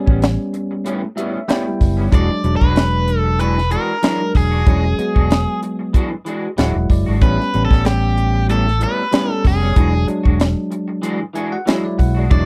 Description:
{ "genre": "straight-eighth soul blues", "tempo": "94 BPM", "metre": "4/4", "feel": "swing 54% on 16ths", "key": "E mixolydian", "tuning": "A4 = 442 Hz", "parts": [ { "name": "bell-like tine electric piano", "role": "accompaniment", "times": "0.0-12.5 s", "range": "F#3 to G#5", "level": "-24 LUFS", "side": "equal", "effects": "none" }, { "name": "electric guitar through a small old amp", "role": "stabs", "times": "0.1-12.5 s", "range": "A2 to F#4", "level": "-27 LUFS", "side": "equal", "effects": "ensemble chorus" }, { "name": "fingered electric bass", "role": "bass", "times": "0.1-12.5 s", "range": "D1 to B1", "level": "-20 LUFS", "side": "equal", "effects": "none" }, { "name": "tight funk drum kit", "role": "drums", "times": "0.1-12.5 s", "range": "hi-hat, kick drum, snare drum", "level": "-17 LUFS", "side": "equal", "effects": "none" }, { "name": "overdriven electric guitar", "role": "melody", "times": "2.1-12.5 s", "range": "G4 to D5", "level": "-24 LUFS", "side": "equal", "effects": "spring reverb" } ], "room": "little or no reverb", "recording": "dry, close 1970s-style studio recording", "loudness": "-17 LUFS", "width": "mono", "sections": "0.0-12.5 A section", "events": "tine electric piano fill 0.9-2.1, 6.3-7.2, 11.0-12.3", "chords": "0.0 A9; 2.1 E9; 7.2 A9; 9.8 E9" }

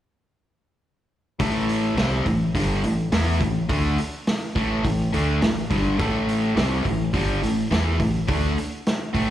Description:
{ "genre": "classic rock", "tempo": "104 BPM", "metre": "4/4", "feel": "straight", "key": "unclear", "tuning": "A4 = 440 Hz", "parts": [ { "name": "distorted electric guitar", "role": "riff", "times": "1.4-9.3 s", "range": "G2 to E4", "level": "-23 LUFS", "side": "equal", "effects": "distortion, slapback echo" }, { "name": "growling fingered electric bass", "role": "bass", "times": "1.4-9.3 s", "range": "G1 to E2", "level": "-25 LUFS", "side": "equal", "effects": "overdrive" }, { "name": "vintage drum kit", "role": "drums", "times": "1.4-9.3 s", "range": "hi-hat, kick drum, snare drum", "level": "-26 LUFS", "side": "equal", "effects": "none" } ], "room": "light reverb, small room reverb", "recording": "live gig heard through the venue's PA, club ambience", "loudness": "-20 LUFS", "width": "side -12 dB against mid", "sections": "1.4-9.3 A section", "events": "none", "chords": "1.4 A5" }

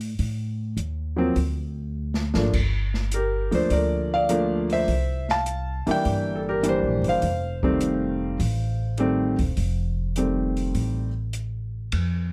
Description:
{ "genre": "jazz piano trio", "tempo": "102 BPM", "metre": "4/4", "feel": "swing 69% on 8ths", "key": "F mixolydian", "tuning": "A4 = 438 Hz", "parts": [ { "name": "upright bass", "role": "bass", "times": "0.0-12.3 s", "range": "E1 to A2", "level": "-29 LUFS", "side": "equal", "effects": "none" }, { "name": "open jazz drum kit", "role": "drums", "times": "0.0-12.1 s", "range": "crash cymbal, hi-hat, kick drum, ride cymbal, snare drum", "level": "-33 LUFS", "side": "equal", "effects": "none" }, { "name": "warm concert grand piano", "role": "melody", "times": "1.2-11.3 s", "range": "Eb3 to A5", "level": "-26 LUFS", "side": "equal", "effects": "plate reverb" } ], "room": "light reverb", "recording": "none", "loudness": "-25 LUFS", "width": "mono", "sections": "0.0-11.9 A section", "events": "drum fill 1.9-2.5", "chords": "0.2 A(b5, no3); 1.4 N.C.; 2.5 Gm7; 4.9 C7; 7.2 F7" }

